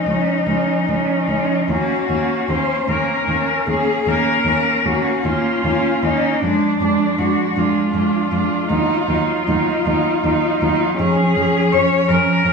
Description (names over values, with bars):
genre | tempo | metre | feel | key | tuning
classical, lyrical piece for cello ensemble | 49-56 BPM (dotted quarters) | 12/8 | rubato | unclear | A4 = 440 Hz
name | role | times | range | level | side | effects
clear cello | melody | 0.0-12.5 s | D4 to Db5 | -20 LUFS | left 5 dB | none
rich cello | second line | 0.0-12.5 s | Db4 to Eb4 | -21 LUFS | right 4 dB | none
rich cello | accompaniment | 0.0-12.5 s | F3 to Bb3 | -22 LUFS | equal | none
rich cello | bass | 0.1-12.5 s | Db2 to F2 | -23 LUFS | right 1 dB | none
room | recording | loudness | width
wet recital hall reverb, RT60 1.8 s | recorded in a church or concert hall, studio reverb | -15 LUFS | side -4 dB against mid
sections
0.0-12.5 A section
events
none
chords
0.0 Db; 1.7 Ebm7; 6.4 Fm6; 8.7 Ebm; 11.0 Db/F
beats
0.47 | 1.69 2.88 4.06 5.25 | 6.42 7.56 8.70 9.86 | 10.99 12.09